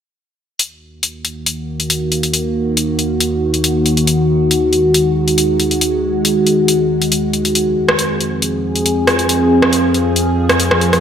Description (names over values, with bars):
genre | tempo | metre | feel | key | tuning
heavy wobble dubstep | 138 BPM | 4/4 | half-time | Eb dorian | A4 = 440 Hz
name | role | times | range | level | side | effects
evolving wavetable pad | sustained chords | 1.4-11.0 s | Eb2 to Ab4 | -14 LUFS | equal | chorus, built-in reverb
dubstep drum kit | drums | 0.6-11.0 s | hi-hat, rim click | -15 LUFS | left 1 dB | overdrive
room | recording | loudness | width
wet lush hall reverb, RT60 1.7 s, digital ambience | dreamy mix soaked in reverb | -13 LUFS | side -8 dB against mid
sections
0.6-11.0 A section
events
filter sweep on ambient pad 0.6-11.0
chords
0.6 Ebm; 7.6 Fm